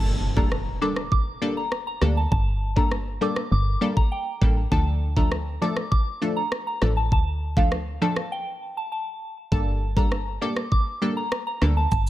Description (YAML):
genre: dancehall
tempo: 100 BPM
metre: 4/4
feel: straight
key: G minor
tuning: A4 = 440 Hz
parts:
  - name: punchy chord stab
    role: accompaniment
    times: 0.0-11.8 s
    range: F3 to A4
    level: -28 LUFS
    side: left 1 dB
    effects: chorus
  - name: woody FM bass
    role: bass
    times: 0.0-12.1 s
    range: G1 to D2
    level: -24 LUFS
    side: equal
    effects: none
  - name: impact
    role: sound effects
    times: 0.0-2.3 s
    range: none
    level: -33 LUFS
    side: equal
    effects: none
  - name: soft synth bell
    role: melody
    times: 0.4-12.0 s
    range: F5 to D6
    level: -30 LUFS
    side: equal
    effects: chorus, phaser, tape echo
  - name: island pop drum kit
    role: drums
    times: 0.4-12.1 s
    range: kick drum, rim click, shaker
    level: -24 LUFS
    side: equal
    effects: none
room: little or no reverb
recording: none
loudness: -22 LUFS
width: side -14 dB against mid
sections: 0.0-12.1 A section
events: break 0.0-9.5; impact 0.0-2.3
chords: 0.0 Gmadd9; 4.7 Dm; 9.5 Gmadd9